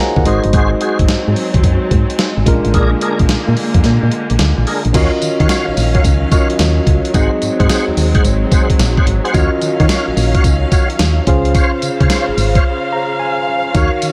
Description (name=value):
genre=R&B, new jack swing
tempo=109 BPM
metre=4/4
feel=swing 66% on 16ths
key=Eb dorian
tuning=A4 = 440 Hz
part: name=tine electric piano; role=accompaniment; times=0.0-14.1 s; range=Ab3 to Bb5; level=-21 LUFS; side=equal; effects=none
part: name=solid FM bass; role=bass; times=0.2-14.1 s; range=G1 to Eb3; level=-18 LUFS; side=equal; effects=none
part: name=dusty soul sampler-style drum kit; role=drums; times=0.2-14.1 s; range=crash cymbal, hi-hat, kick drum, snare drum, tambourine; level=-17 LUFS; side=equal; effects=gated reverb
part: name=tonewheel organ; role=stabs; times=0.3-13.9 s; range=D4 to Gb5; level=-24 LUFS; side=equal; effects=overdrive, chorus vibrato, slow rotary speaker, tape echo
part: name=clear studio string section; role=sustained chords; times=0.5-14.1 s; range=Db3 to F5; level=-23 LUFS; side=equal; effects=none
room=little or no reverb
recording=faint mains hum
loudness=-14 LUFS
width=mono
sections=0.0-4.9 A section; 4.9-14.1 B section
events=tine electric piano fill 0.0-0.5, 12.6-13.7; kick muted 3.8-4.9; break 12.6-13.7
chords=0.3 Ab7; 2.5 Bb7; 4.9 Ebm9; 7.1 Ab7; 9.3 Ebm9; 11.3 Dbmaj7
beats=| 0.54 1.09 1.64 2.19 | 2.74 3.29 3.84 4.39 | 4.94 5.49 6.04 6.59 | 7.14 7.69 8.24 8.79 | 9.34 9.89 10.44 10.99 | 11.54 12.10 12.65 13.20 | 13.75